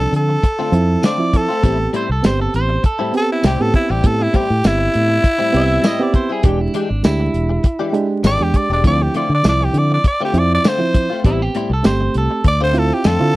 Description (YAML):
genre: straight-eighth soul blues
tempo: 100 BPM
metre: 4/4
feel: straight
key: A minor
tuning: A4 = 440 Hz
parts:
  - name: growling tenor saxophone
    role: melody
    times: 0.0-13.4 s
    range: E4 to D5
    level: -18 LUFS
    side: equal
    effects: none
  - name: bright reed electric piano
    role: accompaniment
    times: 0.0-13.4 s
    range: F3 to G4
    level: -20 LUFS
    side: right 3 dB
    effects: none
  - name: direct-recorded clean electric guitar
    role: stabs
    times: 0.0-13.3 s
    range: A2 to G4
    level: -23 LUFS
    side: left 5 dB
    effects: ensemble chorus
  - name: fingered electric bass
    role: bass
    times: 0.0-13.3 s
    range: E1 to D3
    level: -18 LUFS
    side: equal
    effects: none
  - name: warm soul drum kit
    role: drums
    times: 0.1-13.2 s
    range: hi-hat, kick drum, snare drum, tambourine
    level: -14 LUFS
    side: equal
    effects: none
  - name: electric guitar at the edge of break-up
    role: second line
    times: 2.0-12.5 s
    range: D4 to E5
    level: -23 LUFS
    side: right 2 dB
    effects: none
room: little or no reverb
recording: dry, close 1970s-style studio recording, vinyl crackle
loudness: -14 LUFS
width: side -18 dB against mid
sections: 0.0-13.4 A section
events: none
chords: 0.0 Dm7; 1.6 Am7; 6.4 E7#9; 8.8 Dm7; 11.2 Am7; 12.4 Dm7